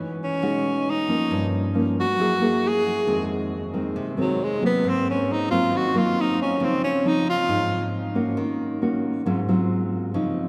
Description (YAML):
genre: bossa nova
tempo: 136 BPM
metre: 4/4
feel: straight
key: unclear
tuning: A4 = 440 Hz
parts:
  - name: nylon-string guitar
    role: accompaniment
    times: 0.0-10.5 s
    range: F2 to Ab4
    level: -26 LUFS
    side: equal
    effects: none
  - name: breathy tenor saxophone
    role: melody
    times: 0.2-7.9 s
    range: Gb3 to Ab4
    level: -27 LUFS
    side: equal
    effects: none
room: wet cathedral reverb, RT60 4.9 s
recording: recorded in a church or concert hall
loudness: -23 LUFS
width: mono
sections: 0.0-10.1 A section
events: tenor saxophone solo 0.0-10.1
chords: 0.0 Emaj9; 1.3 Gm7b5; 2.2 Gb9; 3.1 Fm7; 4.8 Ab9; 6.6 Dbmaj9; 8.4 Ebm7; 9.3 Ab6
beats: 0.43 0.87 | 1.31 1.75 2.19 2.64 | 3.08 3.52 3.96 4.40 | 4.84 5.29 5.73 6.17 | 6.61 7.05 7.49 7.93 | 8.37 8.81 9.26 9.70 | 10.14